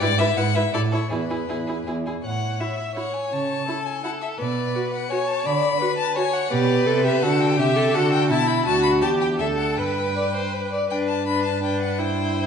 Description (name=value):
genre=quick classical-period movement for string quartet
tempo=167 BPM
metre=3/4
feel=straight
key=A major, G major from 6.5 s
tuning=A4 = 440 Hz
part: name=clear violin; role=melody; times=0.0-12.5 s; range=B4 to B5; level=-26 LUFS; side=left 7 dB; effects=none
part: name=clear violin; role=second line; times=0.0-12.5 s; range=E4 to F#5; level=-26 LUFS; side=left 1 dB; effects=none
part: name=clear viola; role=accompaniment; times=0.0-12.5 s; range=D4 to B4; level=-25 LUFS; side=right 2 dB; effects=none
part: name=clear cello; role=bass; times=0.0-12.5 s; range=D2 to D3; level=-25 LUFS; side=right 2 dB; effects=none
room=wet recital hall reverb, RT60 1.5 s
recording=heard from further back in the room, nothing above 10.4 kHz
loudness=-20 LUFS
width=side -7 dB against mid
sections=0.0-2.2 A section; 2.2-10.9 B section; 10.9-12.5 C section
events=none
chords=0.0 E/G#; 0.7 A; 1.1 E; 2.2 A; 3.3 A/C#; 4.4 Bm; 5.5 Bm/D; 6.5 G/B; 7.6 Am7/C; 8.7 D; 9.0 Em; 9.4 D; 9.8 G